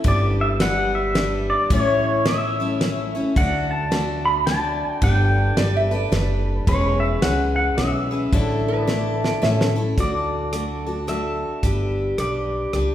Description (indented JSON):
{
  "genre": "honky-tonk and classic country",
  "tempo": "109 BPM",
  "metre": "3/4",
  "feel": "swing 60% on 8ths",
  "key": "D major",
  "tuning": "A4 = 440 Hz",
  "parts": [
    { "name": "picked steel-string acoustic guitar", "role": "accompaniment", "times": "0.0-12.9 s", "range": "A2 to D5", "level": "-24 LUFS", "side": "left 2 dB", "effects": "none" },
    { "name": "upright bass", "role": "bass", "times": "0.0-12.9 s", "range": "E1 to D2", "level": "-24 LUFS", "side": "equal", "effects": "none" },
    { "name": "damped 70s drum kit", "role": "drums", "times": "0.0-12.9 s", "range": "hi-hat, kick drum, ride cymbal, rim click, snare drum", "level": "-24 LUFS", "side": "equal", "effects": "none" },
    { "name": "pedal steel guitar", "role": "melody", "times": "0.1-12.9 s", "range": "C#5 to B5", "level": "-24 LUFS", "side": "equal", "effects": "none" },
    { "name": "lap resonator guitar", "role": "second line", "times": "5.6-9.9 s", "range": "B4 to E5", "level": "-26 LUFS", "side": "right 3 dB", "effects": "none" }
  ],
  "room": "wet recital hall reverb, RT60 1.7 s",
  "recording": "heard from further back in the room",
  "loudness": "-18 LUFS",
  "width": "side -11 dB against mid",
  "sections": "0.0-10.0 A section; 10.0-12.9 B section",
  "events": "drum fill 8.9-10.0",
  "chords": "0.1 G; 1.7 A; 3.4 D; 5.0 Gadd9; 6.7 E6; 8.3 Asus4; 9.4 A; 10.0 D; 11.6 G"
}